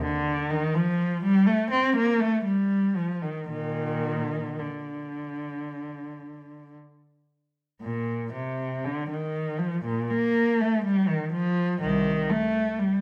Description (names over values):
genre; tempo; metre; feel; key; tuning
classical, baroque-style suite movement for unaccompanied cello; 54-63 BPM; 4/4; rubato; Bb major; A4 = 440 Hz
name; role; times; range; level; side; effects
dark cello; solo; 0.0-13.0 s; C2 to C4; -26 LUFS; equal; none
room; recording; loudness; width
wet stone room reverb, RT60 0.9 s; heard from further back in the room; -26 LUFS; mono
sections
0.0-7.8 A section; 7.8-13.0 A section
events
none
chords
none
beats
0.49 1.46 2.45 | 3.50 4.59 5.69 6.76 | 7.83 8.84 9.84 10.84 | 11.81 12.79